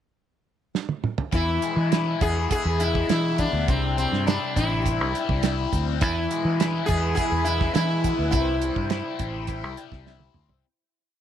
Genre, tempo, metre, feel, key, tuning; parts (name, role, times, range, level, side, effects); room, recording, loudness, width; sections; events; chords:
psychedelic rock; 103 BPM; 4/4; straight; A4 = 440 Hz
cloth-damped thuddy drum kit; drums; 0.7-10.6 s; hi-hat, kick drum, snare drum, toms; -26 LUFS; right 4 dB
sitar; melody; 1.3-10.0 s; C4 to G#4; -27 LUFS; equal; tape echo
cranked stack guitar; riff; 1.3-10.6 s; C3 to E4; -29 LUFS; left 12 dB; overdrive, phaser
fingered electric bass; bass; 1.3-10.6 s; A1 to E3; -26 LUFS; equal
string machine, violas; sustained chords; 6.0-10.6 s; E4 to G#5; -34 LUFS; right 11 dB; phaser, ensemble chorus
light reverb, small room ambience; 1960s-style stereo with parts hard left and right; -21 LUFS; side -10 dB against mid
0.0-1.3 pickup bar; 1.3-10.6 verse
drum fill 0.7-1.3, 10.1-10.6; fade-out 8.3-10.6
0.0 N.C.; 1.3 E; 3.7 C; 6.0 E; 8.3 C